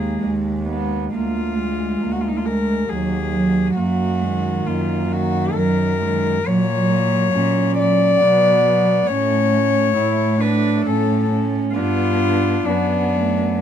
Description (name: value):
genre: classical, lyrical piece for cello ensemble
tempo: 67 BPM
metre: 3/4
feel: rubato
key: Eb minor, B minor from 6.5 s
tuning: A4 = 438 Hz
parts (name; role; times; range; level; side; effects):
- rich cello; melody; 0.0-13.6 s; D4 to D5; -20 LUFS; left 4 dB; none
- warm cello; second line; 0.0-13.6 s; Gb3 to E4; -23 LUFS; right 6 dB; none
- warm cello; accompaniment; 0.0-13.6 s; Eb3 to B3; -24 LUFS; left 1 dB; none
- warm cello; bass; 0.0-13.6 s; D2 to B2; -22 LUFS; right 1 dB; none
room: moderate studio reverb, RT60 0.6 s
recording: minimal, uncompressed stereo recording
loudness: -16 LUFS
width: side -9 dB against mid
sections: 0.0-13.6 A section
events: none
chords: 0.0 Ab5/Eb; 1.1 Bb7/D; 2.9 Ebm; 3.8 Ebm/Gb; 6.5 F#/A#; 8.2 Bm; 9.1 A; 11.8 G7; 12.7 Bm/F#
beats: 0.24 | 1.15 2.03 2.90 | 3.77 4.67 5.56 | 6.46 7.34 8.21 | 9.08 9.97 10.86 | 11.76 12.68